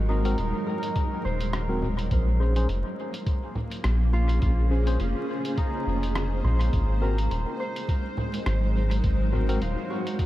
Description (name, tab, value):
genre	ambient dub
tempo	104 BPM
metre	4/4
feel	swing 56% on 16ths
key	unclear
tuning	A4 = 439 Hz
part	granular cloud pad	sustained chords	0.0-10.3 s	Gb3 to C5	-31 LUFS	equal	built-in reverb, vintage 12-bit sampler grit
part	Celtic harp	arpeggios	0.0-10.3 s	Eb4 to C6	-36 LUFS	equal	tape echo
part	soft dub sub bass	bass	0.0-9.8 s	Eb1 to Bb1	-24 LUFS	equal	none
part	mellow tine electric piano	stabs	0.1-9.6 s	C4 to C5	-35 LUFS	left 3 dB	medium stereo tremolo, dub echo
part	lo-fi sampler-style drum kit	drums	0.3-10.3 s	congas, hi-hat, rim click	-36 LUFS	equal	small room reverb, dub echo
part	electronic kick drum	drums	1.0-10.3 s	none	-26 LUFS	equal	small room reverb
room	digital ambience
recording	vinyl crackle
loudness	-23 LUFS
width	side -15 dB against mid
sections	0.0-10.3 A section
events	none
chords	0.0 Ab7; 2.1 Bbm7; 6.7 Ab7